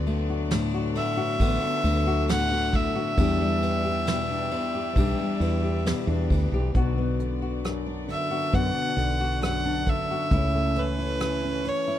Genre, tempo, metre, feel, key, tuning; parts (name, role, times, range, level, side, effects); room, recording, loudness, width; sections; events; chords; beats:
acoustic folk-pop ballad; 67 BPM; 4/4; straight; A4 = 443 Hz
nylon-string guitar; accompaniment; 0.0-12.0 s; E2 to G4; -28 LUFS; left 3 dB
rich chamber string section; sustained chords; 0.0-12.0 s; D3 to E5; -36 LUFS; left 1 dB
woody fretless electric bass; bass; 0.0-11.7 s; A1 to F#2; -27 LUFS; equal
soft brush drum kit; drums; 0.1-11.9 s; hi-hat, kick drum, ride cymbal, rim click, snare drum; -30 LUFS; equal
clear violin; melody; 1.0-12.0 s; B4 to F#5; -28 LUFS; right 1 dB
light reverb; dark, warm production; -23 LUFS; side -11 dB against mid
0.0-6.7 A section; 6.7-12.0 A section
0.0 D6; 3.2 Em7; 6.7 Bm; 10.3 A/C#
0.51 1.39 2.28 | 3.17 4.06 4.96 5.85 | 6.75 7.64 8.53 9.42 | 10.31 11.20